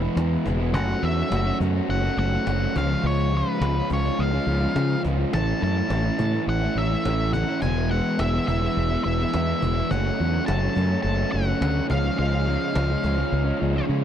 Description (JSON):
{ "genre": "indie rock", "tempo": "105 BPM", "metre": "4/4", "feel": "straight", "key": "unclear", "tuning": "A4 = 440 Hz", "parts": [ { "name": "raw garage guitar", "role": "riff", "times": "0.0-14.0 s", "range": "F#2 to F#4", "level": "-25 LUFS", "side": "equal", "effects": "overdrive" }, { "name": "growling fingered electric bass", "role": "bass", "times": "0.0-14.0 s", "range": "E1 to C#3", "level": "-24 LUFS", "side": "equal", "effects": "overdrive" }, { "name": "cajon", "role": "drums", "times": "0.2-13.2 s", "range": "none", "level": "-32 LUFS", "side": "equal", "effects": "none" }, { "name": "octave-fuzz lead guitar", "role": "melody", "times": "0.7-13.9 s", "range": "B4 to A5", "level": "-29 LUFS", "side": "left 1 dB", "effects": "distortion" } ], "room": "little or no reverb", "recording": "dry, close 1970s-style studio recording", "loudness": "-21 LUFS", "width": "side -9 dB against mid", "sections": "0.0-14.0 A section", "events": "kick and snare drop out 13.9", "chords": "0.0 E; 0.7 F#m; 2.8 C#; 5.3 A; 7.6 E; 9.9 F#m; 11.9 C#" }